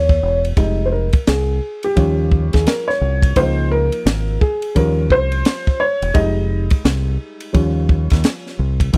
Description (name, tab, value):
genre	hip hop, jazz-hop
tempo	86 BPM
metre	4/4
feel	swing 62% on 16ths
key	unclear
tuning	A4 = 445 Hz
part	deep dub fingered electric bass	bass	0.0-9.0 s	E1 to Eb2	-21 LUFS	equal	none
part	compact cocktail drum kit	drums	0.1-9.0 s	hi-hat, kick drum, ride cymbal, snare drum	-18 LUFS	equal	none
part	dark upright piano	accompaniment	0.6-9.0 s	F3 to Eb5	-22 LUFS	equal	none
room	little or no reverb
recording	dry, close 1970s-style studio recording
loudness	-17 LUFS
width	mono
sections	0.6-9.0 A section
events	upright piano solo 0.6-9.0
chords	0.0 N.C.; 0.6 Fm7; 2.0 Eb9; 3.4 Db6; 4.8 Eb9; 6.2 Fm7; 7.5 Eb9